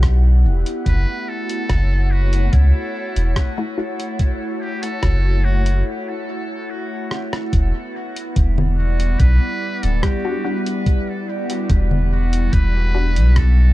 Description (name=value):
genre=ambient dub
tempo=72 BPM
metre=4/4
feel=straight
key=E dorian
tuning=A4 = 440 Hz
part: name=airy breathy pad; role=sustained chords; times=0.0-13.7 s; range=G3 to F#5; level=-26 LUFS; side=equal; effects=chorus, phaser
part: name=soft dub sub bass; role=bass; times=0.0-13.7 s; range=D1 to C#2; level=-15 LUFS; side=equal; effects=none
part: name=electronic kick drum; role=drums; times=0.0-13.5 s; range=none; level=-18 LUFS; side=equal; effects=none
part: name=lo-fi sampler-style drum kit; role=drums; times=0.0-13.5 s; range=congas, hi-hat, rim click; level=-27 LUFS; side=left 2 dB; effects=none
part: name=trumpet with metal mute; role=melody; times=0.9-13.7 s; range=E4 to B4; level=-30 LUFS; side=equal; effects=dub echo
part: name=filtered dub chord stab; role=stabs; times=3.6-4.1, 10.2-13.1 s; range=G3 to F#4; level=-30 LUFS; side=left 4 dB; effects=chorus, dub echo
part: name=handpan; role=arpeggios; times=10.0-13.7 s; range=G3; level=-28 LUFS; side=left 2 dB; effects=dub echo
room=little or no reverb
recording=dark, warm production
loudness=-16 LUFS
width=side -16 dB against mid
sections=0.0-7.5 A section; 7.5-13.7 B section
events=break 5.9-7.5; drum fill 7.1-7.5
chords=0.0 Em9; 0.9 F#m7; 7.5 Em9